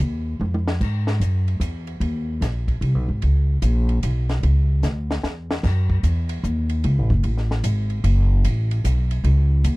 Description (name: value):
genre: modal jazz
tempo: 149 BPM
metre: 3/4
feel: swing 65% on 8ths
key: F# dorian from 5.6 s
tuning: A4 = 441 Hz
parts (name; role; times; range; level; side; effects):
- upright bass; bass; 0.0-9.8 s; F#1 to G#2; -19 LUFS; equal; none
- compact cocktail drum kit; drums; 0.0-9.8 s; crash cymbal, hi-hat, kick drum, ride cymbal, snare drum, toms; -30 LUFS; equal; none
room: little or no reverb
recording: dry, close 1970s-style studio recording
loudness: -19 LUFS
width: side -22 dB against mid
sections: 0.0-5.6 A section; 5.6-9.8 B section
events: drum fill 0.4-0.8, 4.8-5.6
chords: none